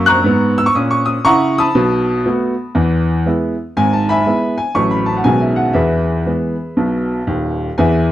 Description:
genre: jazz, stride piano.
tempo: 119 BPM.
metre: 4/4.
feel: swing 66% on 8ths.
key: E major.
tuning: A4 = 439 Hz.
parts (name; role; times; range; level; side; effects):
clear baby grand piano; solo; 0.0-8.1 s; D#1 to F#6; -13 LUFS; equal; none.
room: moderate studio reverb, RT60 0.8 s.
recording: dark, warm production.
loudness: -13 LUFS.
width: side -13 dB against mid.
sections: 0.0-7.8 A section.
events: none.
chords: 0.0 F#7; 1.7 B7; 2.8 E; 3.8 E/G#; 4.8 F#m/A; 5.3 B69; 5.8 E.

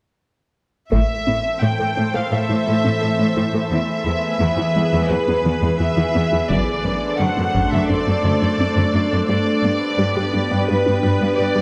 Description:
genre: cinematic, hybrid orchestral and electronic film score.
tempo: 86 BPM.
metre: 4/4.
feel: straight.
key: A minor.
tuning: A4 = 441 Hz.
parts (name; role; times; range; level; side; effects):
rich symphonic violin section; melody; 0.9-11.6 s; B4 to G5; -25 LUFS; equal; none.
organ-like drone; sustained chords; 1.6-11.6 s; E3 to C5; -24 LUFS; equal; ensemble chorus, built-in reverb.
resonant blip pluck; arpeggios; 0.9-11.6 s; D3 to A4; -28 LUFS; equal; phaser.
rich symphonic cello section; bass; 0.9-11.6 s; E2 to A2; -24 LUFS; equal; none.
taiko ensemble; drums; 0.9-2.3, 6.5-7.9 s; none; -27 LUFS; equal; none.
room: moderate concert hall reverb, RT60 2.0 s.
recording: none.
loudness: -19 LUFS.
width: mono.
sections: 0.9-11.6 A section.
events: none.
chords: 0.9 Am; 3.7 E; 6.5 D7/F#; 9.3 G.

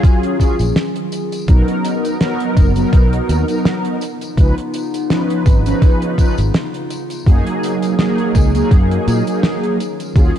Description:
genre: vaporwave.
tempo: 83 BPM.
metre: 4/4.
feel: swing 55% on 16ths.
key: B lydian.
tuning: A4 = 439 Hz.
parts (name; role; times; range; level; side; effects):
mellow synth brass; accompaniment; 0.0-10.3 s; E#3 to B4; -19 LUFS; right 1 dB; ensemble chorus, analog delay.
warbly tape-like pad; sustained chords; 0.0-10.4 s; C#3 to A#4; -24 LUFS; left 2 dB; chorus, built-in reverb.
damped 70s drum kit; drums; 0.0-10.4 s; hi-hat, snare drum, tambourine; -22 LUFS; right 1 dB; vintage 12-bit sampler grit, small room ambience.
electronic kick drum; drums; 0.0-10.3 s; none; -11 LUFS; equal; overdrive, vintage 12-bit sampler grit, small room ambience.
fingered electric bass; bass; 0.6-10.3 s; F#1 to A#2; -16 LUFS; equal; tube saturation.
room: little or no reverb.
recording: dark, warm production.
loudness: -13 LUFS.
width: side -10 dB against mid.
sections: 0.0-10.4 A section.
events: none.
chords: 0.0 D#m11; 1.5 Bmaj7; 4.0 C#9; 7.3 F#69; 9.8 D#m11.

